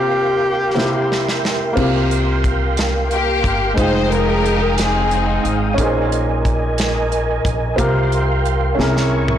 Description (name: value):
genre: slow gospel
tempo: 60 BPM (dotted quarters)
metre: 6/8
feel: straight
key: unclear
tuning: A4 = 440 Hz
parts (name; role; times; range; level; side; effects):
- breathy tenor saxophone; melody; 0.0-1.4 s; G4; -20 LUFS; left 2 dB; tape echo
- warm concert grand piano; accompaniment; 0.0-9.4 s; Bb2 to G5; -20 LUFS; equal; none
- mellow tonewheel organ; sustained chords; 0.0-9.4 s; Ab3 to Eb6; -22 LUFS; right 3 dB; slow rotary speaker, chorus vibrato
- modern studio drum kit; drums; 0.8-9.4 s; crash cymbal, hi-hat, kick drum, snare drum, toms; -23 LUFS; equal; none
- upright bass; bass; 1.8-9.4 s; F1 to C2; -20 LUFS; equal; none
- warm studio string section; melody; 3.1-5.8 s; Bb3 to C5; -18 LUFS; left 4 dB; none
room: light reverb, studio ambience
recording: blown-out, overdriven recording, overdrive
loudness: -15 LUFS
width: side -10 dB against mid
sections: 0.0-1.8 A section; 1.8-9.4 B section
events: break 0.0-1.8; drum fill 0.8-1.8, 8.8-9.4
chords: 0.0 C7sus4; 0.8 C7; 1.8 C7sus4; 3.8 Fm9; 5.8 Bbm11; 7.8 C7sus4; 8.8 C7b9b13